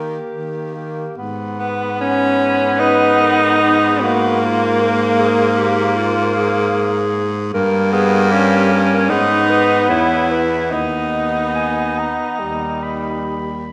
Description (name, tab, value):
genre	classical, lyrical piece for single-reed quartet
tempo	75 BPM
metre	4/4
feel	uneven beats, rubato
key	G# minor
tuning	A4 = 440 Hz
part	clear clarinet	melody	0.0-13.7 s	F4 to B5	-24 LUFS	equal	none
part	clear alto saxophone	second line	0.0-13.6 s	A#3 to G4	-20 LUFS	equal	none
part	warm tenor saxophone	accompaniment	0.0-13.7 s	G3 to B3	-23 LUFS	equal	none
part	clear baritone saxophone	bass	0.0-13.7 s	D#2 to D#3	-23 LUFS	equal	none
room	wet scoring stage reverb, RT60 1.7 s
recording	none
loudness	-16 LUFS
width	mono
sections	0.0-1.2 A section; 1.2-13.7 A section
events	none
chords	0.0 D#; 1.2 G#m; 4.4 Fmadd11/Ab; 7.5 Gdim; 9.1 G#m; 10.7 G#m/D#; 12.4 D#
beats	0.30 | 1.17 1.99 2.80 3.61 | 4.41 5.19 5.96 6.75 | 7.54 8.31 9.09 9.89 | 10.71 11.54 12.39 13.23